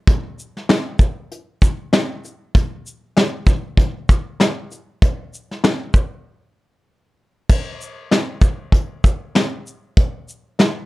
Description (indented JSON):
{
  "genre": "hip hop",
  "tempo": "97 BPM",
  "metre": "4/4",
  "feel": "swing 60% on 16ths",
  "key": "none",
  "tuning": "none",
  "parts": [
    { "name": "soft brush drum kit", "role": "drums", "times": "0.1-10.8 s", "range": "crash cymbal, hi-hat, kick drum, shaker, snare drum", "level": "-15 LUFS", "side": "equal", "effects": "none" }
  ],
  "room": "little or no reverb",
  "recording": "dry, gritty hardware recording",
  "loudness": "-17 LUFS",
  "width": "side -19 dB against mid",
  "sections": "0.0-7.5 A section; 7.5-10.9 B section",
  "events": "break 6.3-7.5",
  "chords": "none"
}